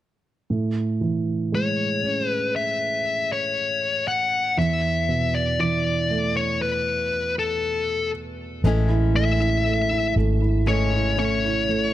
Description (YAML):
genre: pop ballad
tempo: 59 BPM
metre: 4/4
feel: straight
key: A major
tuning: A4 = 440 Hz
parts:
  - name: dark baby grand piano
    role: accompaniment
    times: 0.5-11.9 s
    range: E2 to E4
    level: -25 LUFS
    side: right 3 dB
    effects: none
  - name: fuzz lead guitar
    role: melody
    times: 1.6-11.9 s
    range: A4 to F#5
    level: -23 LUFS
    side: left 3 dB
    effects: distortion
  - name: fingerpicked acoustic archtop guitar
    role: arpeggios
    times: 8.6-11.9 s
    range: E3 to E4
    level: -31 LUFS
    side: left 6 dB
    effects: plate reverb
  - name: vintage muted fingered electric bass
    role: bass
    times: 8.6-11.9 s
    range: G#1 to A1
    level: -22 LUFS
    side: equal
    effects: none
room: moderate studio reverb, RT60 0.6 s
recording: none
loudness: -20 LUFS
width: side -13 dB against mid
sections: 0.5-8.6 A section; 8.6-11.9 B section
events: none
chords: 0.5 Amaj7; 4.6 Esus4; 8.6 Amaj7